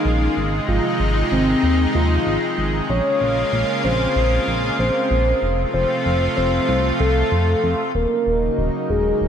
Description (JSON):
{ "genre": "synthwave", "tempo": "95 BPM", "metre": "4/4", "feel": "straight", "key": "Bb minor", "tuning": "A4 = 440 Hz", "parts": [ { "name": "soft octave-layered synth lead", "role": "melody", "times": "0.0-9.3 s", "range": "C4 to Db5", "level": "-21 LUFS", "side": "equal", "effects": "chorus, digital delay" }, { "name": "lush unison pad", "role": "sustained chords", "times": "0.0-9.3 s", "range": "C3 to F4", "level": "-22 LUFS", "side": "equal", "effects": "chorus" }, { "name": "chorused synth bass", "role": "bass", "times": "0.1-9.3 s", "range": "Eb1 to F2", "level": "-21 LUFS", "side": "equal", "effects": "tube saturation" } ], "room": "moderate lush hall reverb, RT60 2.9 s", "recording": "bright 1980s-style digital production", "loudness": "-17 LUFS", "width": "side -8 dB against mid", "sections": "0.0-7.9 A section; 7.9-9.3 B section", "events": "filter sweep on analog synth pad 7.9-9.3", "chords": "0.4 Ab; 2.9 Bbm7; 5.4 F; 7.9 Ebm7", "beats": "| 0.37 1.00 1.63 2.27 | 2.90 3.53 4.16 4.79 | 5.42 6.05 6.69 7.32 | 7.95 8.58 9.21" }